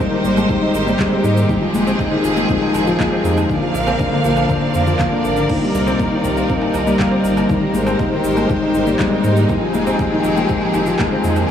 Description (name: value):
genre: piano and strings electronica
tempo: 120 BPM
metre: 4/4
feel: straight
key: F dorian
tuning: A4 = 440 Hz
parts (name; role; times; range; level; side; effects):
- rich studio string section; sustained chords; 0.0-11.5 s; C3 to F5; -20 LUFS; right 1 dB; sidechain pumping
- dark baby grand piano; riff; 0.0-11.5 s; D3 to Eb4; -17 LUFS; left 2 dB; diffuse ambient delay
- deep house drum kit; drums; 0.0-11.5 s; crash cymbal, handclaps, shaker, woodblock; -30 LUFS; right 1 dB; overdrive
- warm sub bass; bass; 0.2-11.4 s; F1 to Ab2; -22 LUFS; right 1 dB; tube saturation, sidechain pumping
- electronic kick drum; drums; 0.5-11.1 s; none; -23 LUFS; equal; overdrive
room: wet huge ambient reverb, RT60 8.6 s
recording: dreamy mix soaked in reverb, studio reverb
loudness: -14 LUFS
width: side -9 dB against mid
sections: 0.0-11.5 A section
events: none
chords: 0.0 Abmaj7; 1.5 Fm7; 3.5 Bbadd9; 5.5 Cm7; 7.5 Abmaj7; 9.5 Fm7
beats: 0.49 0.99 | 1.49 1.99 2.49 2.99 | 3.49 3.99 4.49 4.99 | 5.49 5.99 6.49 6.99 | 7.49 7.99 8.49 8.99 | 9.49 9.99 10.49 10.99 | 11.49